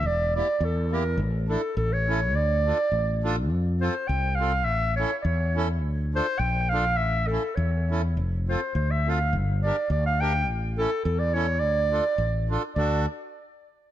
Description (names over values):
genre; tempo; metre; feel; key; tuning
alpine folk, alpine dance band; 104 BPM; 2/4; swing 53% on 8ths; D minor; A4 = 443 Hz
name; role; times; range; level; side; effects
clear clarinet; melody; 0.0-13.0 s; A4 to G5; -27 LUFS; right 1 dB; ping-pong delay
fretless electric bass; bass; 0.0-13.1 s; E1 to F2; -25 LUFS; equal; none
accordion; accompaniment; 0.4-13.1 s; Bb3 to Bb4; -32 LUFS; right 2 dB; none
room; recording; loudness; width
moderate echo chamber reverb, RT60 1.2 s; dark, warm production; -23 LUFS; side -12 dB against mid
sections
0.0-12.8 A section; 12.8-13.9 B section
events
none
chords
0.0 Edim; 1.2 Asus4; 1.8 A; 2.3 Dm; 3.5 F; 4.7 A; 5.8 Dm; 7.0 A; 8.2 F; 9.3 Gm; 10.5 A; 11.6 Dm; 12.8 D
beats
| 0.04 0.61 | 1.19 1.76 | 2.34 2.92 | 3.51 4.09 | 4.67 5.25 | 5.82 6.40 | 6.98 7.57 | 8.15 8.74 | 9.32 9.90 | 10.47 11.04 | 11.61 12.19 | 12.77